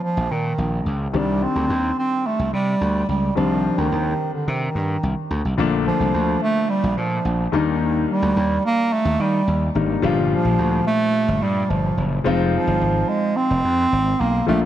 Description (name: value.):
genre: pop.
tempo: 108 BPM.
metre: 4/4.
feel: straight.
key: Bb major.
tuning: A4 = 439 Hz.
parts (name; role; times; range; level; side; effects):
clear bass clarinet; melody; 0.0-14.6 s; D3 to C4; -21 LUFS; right 2 dB; none.
clear baby grand piano; accompaniment; 0.0-14.7 s; Bb2 to A4; -24 LUFS; left 5 dB; none.
gritty slap bass; bass; 0.2-14.7 s; F1 to Eb3; -23 LUFS; equal; overdrive.
room: light reverb, small room ambience.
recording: dark, warm production.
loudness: -18 LUFS.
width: side -12 dB against mid.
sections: 0.0-5.6 A section; 5.6-14.7 B section.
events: none.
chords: 0.0 Bbsus2; 1.1 Cmadd9; 5.6 Bbmaj7; 7.5 Ebmaj7; 10.0 Gm7; 12.3 Fm7.